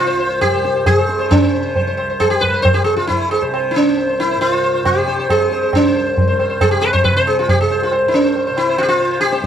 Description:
indian classical, Hindustani; 136 BPM; 5/4; straight; A4 = 442 Hz
sitar; melody; 0.0-9.5 s; Db4 to C5; -14 LUFS; equal
tanpura; drone; 0.0-9.5 s; C2 to C3; -26 LUFS; left 2 dB
tabla; percussion; 0.4-9.5 s; -19 LUFS; right 2 dB
moderate small room reverb, RT60 0.6 s; dark, warm production; -13 LUFS; side -9 dB against mid
0.0-9.5 A section
speeding up 0.0-9.5

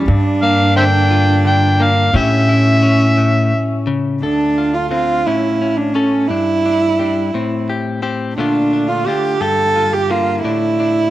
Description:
acoustic folk-pop ballad; 58 BPM (dotted quarters); 6/8; straight; D minor from 4.2 s; A4 = 440 Hz
warm cello; second line; 0.0-11.1 s; C#4 to A4; -16 LUFS; right 3 dB
direct-recorded clean electric guitar; accompaniment; 0.0-11.1 s; D2 to A4; -19 LUFS; left 4 dB
upright bass; bass; 0.0-4.2 s; G2 to A2; -16 LUFS; equal
overdriven harmonica; melody; 0.4-3.8 s; C5 to G5; -16 LUFS; left 1 dB
light reverb, small room reverb; dry, close 1970s-style studio recording; -13 LUFS; side -14 dB against mid
0.0-4.2 A section; 4.2-11.1 B section
cello solo 4.2-11.1
0.1 Gm7; 2.1 A7; 4.2 Dm7; 5.3 A; 6.3 Em7/G; 7.3 Am7; 8.4 Bbmaj7; 9.4 Gm7; 10.4 Asus4

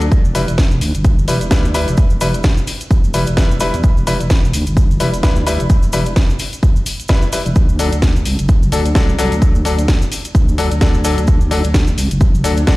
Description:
bass house; 129 BPM; 4/4; swing 58% on 16ths; E minor; A4 = 442 Hz
vowel-sweep wobble bass; bass; 0.0-12.8 s; E1 to E2; -18 LUFS; equal; chorus, tube saturation, sidechain pumping
house drum kit; drums; 0.0-12.8 s; hi-hat, snare drum; -22 LUFS; equal
cabasa; percussion; 0.0-12.8 s; -31 LUFS; right 2 dB
electronic kick drum; drums; 0.1-12.8 s; -12 LUFS; equal
bright grand piano; stabs; 0.3-12.8 s; F#3 to B4; -21 LUFS; left 2 dB; sidechain pumping, dub echo
little or no reverb; played on a big sound system in a bare room, stone room reverb; -12 LUFS; side -20 dB against mid
0.0-12.8 A section
0.1 Em; 7.6 D

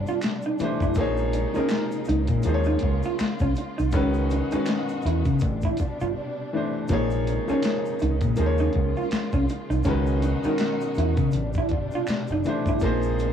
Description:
R&B, neo-soul; 81 BPM; 4/4; swing 57% on 16ths; Bb minor; A4 = 439 Hz
warm studio string section; sustained chords; 0.0-13.3 s; Cb3 to Gb4; -33 LUFS; left 1 dB; cassette tape, plate reverb
deep dub fingered electric bass; bass; 0.0-13.3 s; Gb1 to Db3; -25 LUFS; equal
electric guitar through a small old amp; second line; 0.1-13.3 s; Bb3 to F4; -29 LUFS; right 3 dB; harmonic tremolo, cassette tape, plate reverb
egg shaker and finger snaps; percussion; 0.1-13.3 s; -44 LUFS; right 2 dB
dusty soul sampler-style drum kit; drums; 0.2-13.3 s; handclaps, hi-hat, kick drum, snare drum; -28 LUFS; equal; overdrive, cassette tape
clear grand piano; accompaniment; 0.6-13.3 s; Eb3 to Db5; -26 LUFS; left 2 dB; cassette tape, plate reverb
light reverb; home recording on cassette; -22 LUFS; side -8 dB against mid
0.0-13.3 A section
break 6.2-6.9
0.0 Am11; 1.0 Bbm11; 2.4 Eb9sus4; 3.9 Dbm11; 5.4 Am11; 6.9 Bbm11; 8.4 Eb9sus4; 9.9 Dbm11; 11.3 Am11; 12.8 Bbm11

